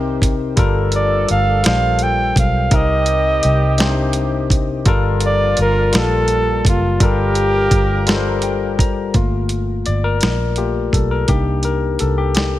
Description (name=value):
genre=slow six-eight R&B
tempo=56 BPM (dotted quarters)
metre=6/8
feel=straight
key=G minor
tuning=A4 = 445 Hz
part: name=barky tine electric piano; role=accompaniment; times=0.0-12.6 s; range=C3 to Bb5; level=-20 LUFS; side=left 5 dB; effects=overdrive
part: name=warm horn section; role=stabs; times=0.0-8.8 s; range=D3 to Bb4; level=-27 LUFS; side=right 2 dB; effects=digital delay
part: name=vintage muted fingered electric bass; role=bass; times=0.0-12.6 s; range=F#1 to C2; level=-19 LUFS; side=right 1 dB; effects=none
part: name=dusty soul sampler-style drum kit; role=drums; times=0.2-12.5 s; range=hi-hat, kick drum, snare drum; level=-17 LUFS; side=right 1 dB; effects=none
part: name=warm flugelhorn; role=melody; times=1.0-8.4 s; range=F4 to G5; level=-19 LUFS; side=right 1 dB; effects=digital delay
room=digital ambience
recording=none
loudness=-14 LUFS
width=side -14 dB against mid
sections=0.0-9.1 A section; 9.1-12.6 B section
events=tine electric piano fill 8.1-9.1; tine electric piano solo 9.1-12.6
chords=0.0 Cm7; 0.6 Gm9; 2.7 Cm7; 4.9 Gm9; 11.3 Cm7